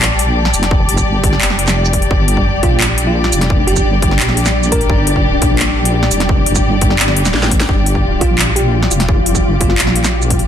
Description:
half-time drum and bass; 172 BPM; 4/4; half-time; G minor; A4 = 440 Hz
warm studio string section; sustained chords; 0.0-10.5 s; G3 to D5; -19 LUFS; left 2 dB; sidechain pumping
deep soft wobble bass; bass; 0.0-10.5 s; F1 to Bb1; -16 LUFS; equal; chorus
drum and bass drum kit; drums; 0.0-10.5 s; handclaps, hi-hat, shaker, snare drum; -17 LUFS; equal
flickering grainy texture; texture; 0.0-10.5 s; F3 to A5; -22 LUFS; left 2 dB; built-in reverb
electronic kick drum; drums; 0.7-10.4 s; -16 LUFS; equal
bell-like FM electric piano; melody; 2.6-5.1, 8.2-9.7 s; F4 to Bb4; -22 LUFS; right 2 dB; chorus, digital delay
light reverb; dense, heavily limited modern master; -11 LUFS; side -9 dB against mid
0.0-10.5 A section
drum fill 7.3-7.7
0.0 Gm

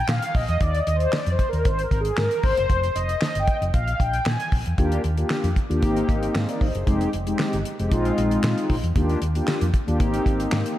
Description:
early-eighties boogie funk; 115 BPM; 4/4; straight; Eb major; A4 = 440 Hz
mellow synth brass; accompaniment; 0.0-10.8 s; Ab3 to Ab5; -24 LUFS; left 1 dB; chorus
fingered electric bass; bass; 0.1-10.6 s; F1 to Bb2; -25 LUFS; equal
damped 70s drum kit; drums; 0.1-10.8 s; handclaps, hi-hat, kick drum, snare drum; -25 LUFS; equal
moderate concert hall reverb, RT60 2.5 s; big arena sound; -20 LUFS; side -13 dB against mid
0.0-4.8 A section; 4.8-10.8 B section
analog polysynth solo 0.0-4.8
0.0 Bbsus4; 0.6 Cm9/Eb; 1.7 Gbadd9 (rootless); 2.7 Fsus2; 3.7 Bb5; 4.8 Ebmaj7; 5.8 Abmaj9; 6.9 Fm9; 7.9 Bb9sus4; 9.0 Ebmaj7; 10.0 Abmaj9

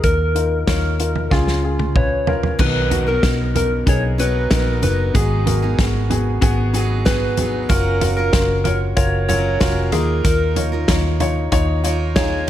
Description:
piano-driven pop; 94 BPM; 4/4; straight; A4 = 440 Hz
soft struck synth lead; melody; 0.0-12.5 s; F4 to Db5; -22 LUFS; left 1 dB; chorus
warm baby grand piano; accompaniment; 0.0-12.5 s; Ab2 to Db5; -23 LUFS; left 3 dB
vintage muted fingered electric bass; bass; 0.0-12.5 s; F1 to Eb2; -20 LUFS; equal
loose indie drum kit; drums; 0.0-12.5 s; crash cymbal, hi-hat, kick drum, snare drum, toms; -20 LUFS; equal
picked steel-string acoustic guitar; riff; 2.6-12.5 s; Ab2 to A#4; -26 LUFS; right 5 dB
light reverb; -15 LUFS; side -12 dB against mid
0.0-2.6 A section; 2.6-12.5 B section
drum fill 1.3-2.6
0.0 Ebsus2; 1.3 Db; 2.6 Bmaj7; 5.1 Abm7; 7.7 Gbmaj7; 9.9 Ebsus2

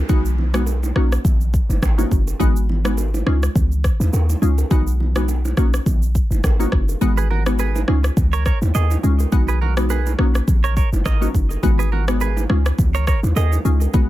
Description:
afrobeats; 104 BPM; 4/4; swing 55% on 16ths; F# major; A4 = 439 Hz
warm 808-style bass; bass; 0.0-14.1 s; F#1 to D#2; -18 LUFS; equal
downlifter; sound effects; 0.0-2.4 s; -43 LUFS; equal
glassy wavetable pluck; accompaniment; 0.1-14.1 s; G#3 to F#4; -23 LUFS; left 1 dB; chorus
afro-pop drum kit; drums; 0.1-14.1 s; kick drum, rim click, shaker; -20 LUFS; equal
congas and bongos; percussion; 0.1-14.1 s; -29 LUFS; right 3 dB
direct-recorded clean electric guitar; riff; 7.2-13.6 s; F#4 to D#5; -26 LUFS; right 9 dB; analog chorus, tape echo
little or no reverb; -16 LUFS; side -15 dB against mid
0.0-14.1 A section
kick muted 7.0-8.2
0.1 B6; 1.0 F#6/A#; 2.4 G#m7; 3.3 C#add9; 4.7 B6; 5.6 F#6/A#; 7.0 G#m7; 7.9 C#add9; 9.3 B6; 10.2 F#6/A#; 11.6 G#m7; 12.5 C#add9

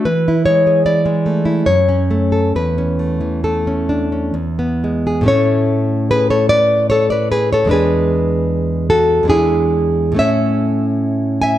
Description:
romantic piece for solo classical guitar; 61-79 BPM; 3/4; rubato; A major; A4 = 439 Hz
nylon-string guitar; solo; 0.0-11.6 s; E2 to G#5; -13 LUFS; equal; slapback echo
moderate recital hall reverb, RT60 1.6 s; dark, warm production; -13 LUFS; side -12 dB against mid
0.0-5.3 A section; 5.3-11.6 B section
0.1 E; 1.7 F#m; 2.5 A/E; 4.4 E; 5.3 A; 7.7 E7; 10.2 A

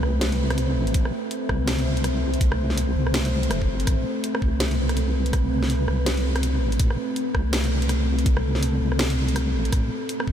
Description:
half-time drum and bass; 164 BPM; 4/4; swing 60% on 16ths, half-time; A minor; A4 = 440 Hz
deep dark ambient pad; sustained chords; 0.0-10.3 s; A3 to C5; -27 LUFS; equal; chorus, built-in reverb, vintage 12-bit sampler grit, sidechain pumping
deep soft wobble bass; bass; 0.0-10.3 s; E1 to C2; -23 LUFS; equal; chorus
drum and bass drum kit; drums; 0.0-10.3 s; hi-hat, rim click, snare drum; -28 LUFS; equal
electronic kick drum; drums; 0.9-10.3 s; -22 LUFS; equal
light reverb; -21 LUFS; side -9 dB against mid
0.0-10.3 A section
0.0 Amadd9

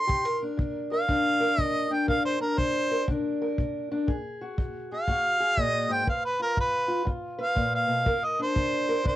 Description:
acoustic country blues, solo or duo; 120 BPM; 4/4; swing 65% on 8ths; A4 = 442 Hz
warm harmonica; melody; 0.0-9.2 s; Bb4 to C6; -25 LUFS; right 1 dB; cassette tape
fingerpicked steel-string acoustic guitar; accompaniment; 0.0-9.2 s; G2 to B4; -29 LUFS; left 1 dB
kick drum; drums; 0.1-9.2 s; -30 LUFS; equal; cassette tape
light reverb; home recording on cassette; -24 LUFS; side -14 dB against mid
0.0-9.2 A section
harmonica solo 0.0-9.2
0.1 Csus2; 4.1 F#maj9/G#; 6.1 G7#9; 8.1 C7sus2

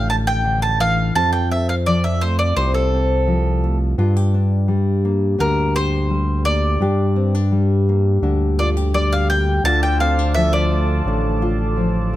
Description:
acoustic folk duo or small band; 85 BPM; 4/4; straight; A4 = 440 Hz
bowl-back mandolin; melody; 0.0-11.2 s; A4 to A5; -21 LUFS; right 1 dB
nylon-string guitar; accompaniment; 0.0-12.2 s; F2 to A4; -22 LUFS; left 2 dB
smooth synth bass; bass; 0.0-12.2 s; A1 to G2; -18 LUFS; equal
mellow accordion; sustained chords; 9.6-12.2 s; F3 to A4; -27 LUFS; right 1 dB
little or no reverb; close, detailed microphones; -16 LUFS; side -14 dB against mid
0.0-12.2 A section
mandolin solo 0.0-12.2
0.0 Dm; 1.2 F; 4.0 Gm; 9.6 Dm

